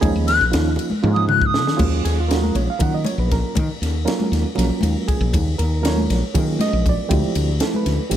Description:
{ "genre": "electric jazz fusion", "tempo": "237 BPM (eighths)", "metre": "7/8", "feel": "straight", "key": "Eb minor", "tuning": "A4 = 440 Hz", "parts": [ { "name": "bright reed electric piano", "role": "accompaniment", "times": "0.0-8.2 s", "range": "F3 to Gb5", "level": "-24 LUFS", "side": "right 5 dB", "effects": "overdrive, fast tremolo" }, { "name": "woody fretless electric bass", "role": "bass", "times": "0.0-8.2 s", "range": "A1 to Eb3", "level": "-20 LUFS", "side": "equal", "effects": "none" }, { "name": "crisp fusion drum kit", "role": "drums", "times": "0.0-8.2 s", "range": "crash cymbal, kick drum, ride cymbal, snare drum, toms", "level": "-23 LUFS", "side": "left 1 dB", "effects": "none" }, { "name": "congas", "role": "percussion", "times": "0.0-8.2 s", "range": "none", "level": "-26 LUFS", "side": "left 2 dB", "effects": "none" }, { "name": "reedy silver concert flute", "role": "melody", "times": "0.3-1.8 s", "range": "Eb6 to Gb6", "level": "-21 LUFS", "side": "left 3 dB", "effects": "tape echo" } ], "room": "little or no reverb", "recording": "none", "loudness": "-17 LUFS", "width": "side -10 dB against mid", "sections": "0.0-1.8 A section; 1.8-8.2 A section", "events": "flute solo 0.0-1.8; drum fill 1.0-1.8", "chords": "0.0 Eb9sus4; 1.8 Ebm11; 7.1 Dm11", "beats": "| 0.03 0.28 0.53 0.78 1.04 1.29 1.54 | 1.79 2.05 2.30 2.55 2.81 3.06 3.31 | 3.57 3.82 4.07 4.32 4.58 4.83 5.08 | 5.33 5.59 5.84 6.09 6.35 6.60 6.85 | 7.10 7.36 7.61 7.86 8.11" }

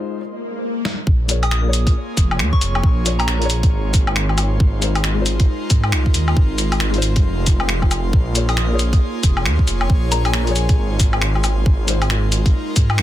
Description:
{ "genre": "future garage", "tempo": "136 BPM", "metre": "4/4", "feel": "swing 61% on 16ths", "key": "Bb minor", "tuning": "A4 = 439 Hz", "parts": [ { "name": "felt-muted upright piano", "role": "accompaniment", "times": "0.0-12.0 s", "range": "Ab3 to Db5", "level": "-29 LUFS", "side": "left 5 dB", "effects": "sidechain pumping, dub echo" }, { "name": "airy breathy pad", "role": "sustained chords", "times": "0.0-13.0 s", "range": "Ab3 to C6", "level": "-28 LUFS", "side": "right 2 dB", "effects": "chorus, sidechain pumping" }, { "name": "swell", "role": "sound effects", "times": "0.3-1.1 s", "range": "none", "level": "-25 LUFS", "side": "left 3 dB", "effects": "none" }, { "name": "lo-fi sampler-style drum kit", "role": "drums", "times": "0.9-13.0 s", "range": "cabasa, finger snaps, hi-hat, snare drum, woodblock", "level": "-22 LUFS", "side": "left 2 dB", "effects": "soft clipping on snare" }, { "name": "swelling detuned saw bass", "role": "bass", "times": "1.1-13.0 s", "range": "F1 to Ab2", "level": "-19 LUFS", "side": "equal", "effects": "tube saturation, sidechain pumping" }, { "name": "electronic kick drum", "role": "drums", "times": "1.1-12.9 s", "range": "none", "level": "-15 LUFS", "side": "equal", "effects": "none" }, { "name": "soft synth bell", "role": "melody", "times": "1.4-3.5, 8.5-10.7 s", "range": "Ab5 to Eb6", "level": "-30 LUFS", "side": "left 1 dB", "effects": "chorus, phaser, vintage 12-bit sampler grit, dub echo" } ], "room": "digital ambience", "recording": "dense, heavily limited modern master", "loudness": "-15 LUFS", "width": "side -13 dB against mid", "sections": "0.0-1.1 A section; 1.1-13.0 B section", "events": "swell 0.3-1.1; drum fill 0.8", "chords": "0.0 Ab6; 1.1 Bbm7; 4.6 Ab6; 8.1 Bbm7; 11.7 Ab6", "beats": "0.19 0.63 | 1.07 1.51 1.95 2.39 | 2.83 3.28 3.72 4.16 | 4.60 5.04 5.48 5.92 | 6.37 6.81 7.25 7.69 | 8.13 8.57 9.01 9.45 | 9.89 10.34 10.78 11.22 | 11.66 12.10 12.54 12.98" }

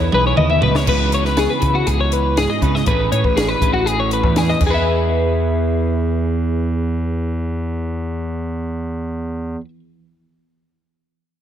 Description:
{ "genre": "math rock and midwest emo", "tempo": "120 BPM", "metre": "4/4", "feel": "straight", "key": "E major", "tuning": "A4 = 440 Hz", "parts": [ { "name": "twelve-string electric guitar", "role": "accompaniment", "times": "0.0-9.8 s", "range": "E2 to B4", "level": "-24 LUFS", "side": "right 8 dB", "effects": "analog chorus" }, { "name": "twelve-string electric guitar", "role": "arpeggios", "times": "0.0-9.7 s", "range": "F#4 to E5", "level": "-19 LUFS", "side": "left 4 dB", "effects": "analog chorus" }, { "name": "fuzz picked electric bass", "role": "bass", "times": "0.0-9.5 s", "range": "A1 to C#3", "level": "-20 LUFS", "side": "equal", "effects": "overdrive" }, { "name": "compact cocktail drum kit", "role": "drums", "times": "0.1-4.7 s", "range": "crash cymbal, hi-hat, kick drum, snare drum, toms", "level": "-21 LUFS", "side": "equal", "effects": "none" } ], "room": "moderate lush hall reverb, RT60 2.3 s", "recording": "dreamy mix soaked in reverb", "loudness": "-16 LUFS", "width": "side -10 dB against mid", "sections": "0.9-4.9 A section; 4.9-8.9 B section", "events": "drum fill 0.0-0.9", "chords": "0.0 E; 0.9 C#m11; 2.9 Amaj9#11; 4.6 E", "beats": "0.39 | 0.89 1.38 1.88 2.37 | 2.87 3.37 3.87 4.37 | 4.87 5.37 5.87 6.37 | 6.87 7.37 7.87 8.37" }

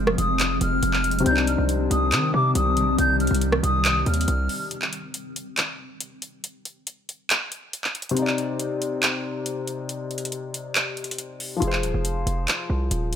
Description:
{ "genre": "hip hop, trap", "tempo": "139 BPM", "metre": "4/4", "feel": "half-time", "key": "C minor", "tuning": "A4 = 438 Hz", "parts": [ { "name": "felt-muted upright piano", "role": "accompaniment", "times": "0.0-4.7, 8.1-13.2 s", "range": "C3 to D5", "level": "-28 LUFS", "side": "left 5 dB", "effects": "none" }, { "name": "granular cloud pad", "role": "sustained chords", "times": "0.0-4.7 s", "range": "C3 to C4", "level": "-28 LUFS", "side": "left 2 dB", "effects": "built-in reverb" }, { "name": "hard-hitting 808-style bass", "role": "bass", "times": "0.0-4.5, 11.6-13.2 s", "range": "Eb1 to Eb3", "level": "-24 LUFS", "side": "right 1 dB", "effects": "none" }, { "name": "trap drum kit", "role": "drums", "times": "0.1-13.2 s", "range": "handclaps, hi-hat, rim click", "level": "-25 LUFS", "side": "right 1 dB", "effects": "none" }, { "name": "wooden flute", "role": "melody", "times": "0.2-4.7 s", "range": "D6 to G6", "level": "-25 LUFS", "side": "left 1 dB", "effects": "digital delay" } ], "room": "studio ambience", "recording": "none", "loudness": "-21 LUFS", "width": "side -8 dB against mid", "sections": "0.0-4.7 A section; 4.7-13.2 B section", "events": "break 4.7-11.6", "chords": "0.0 Fm; 1.3 Cmadd9; 4.7 N.C.; 8.2 Cmadd9; 11.6 Fm", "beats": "0.40 0.83 | 1.26 1.69 2.12 2.55 | 2.98 3.42 3.85 4.28 | 4.71 5.14 5.58 6.01 | 6.44 6.87 7.30 7.73 | 8.16 8.60 9.03 9.46 | 9.89 10.32 10.76 11.19 | 11.62 12.05 12.48 12.91" }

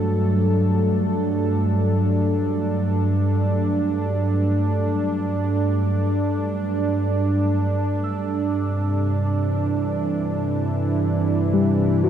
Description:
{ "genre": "ambient", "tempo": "free time", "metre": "none", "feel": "none", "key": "unclear", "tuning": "A4 = 440 Hz", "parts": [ { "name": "warm analog pad", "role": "sustained chords", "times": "0.0-12.1 s", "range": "G2 to A4", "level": "-19 LUFS", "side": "right 1 dB", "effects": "chorus, shimmer reverb" }, { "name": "muted felt-like synth keys", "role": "arpeggios", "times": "8.0-12.1 s", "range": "G3 to E6", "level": "-25 LUFS", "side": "left 5 dB", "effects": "chorus" } ], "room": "wet huge ambient reverb, RT60 7.6 s", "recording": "none", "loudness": "-19 LUFS", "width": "side -9 dB against mid", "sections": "0.0-12.1 A section", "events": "none", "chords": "0.0 D/G; 8.0 Cadd9/G", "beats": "free time" }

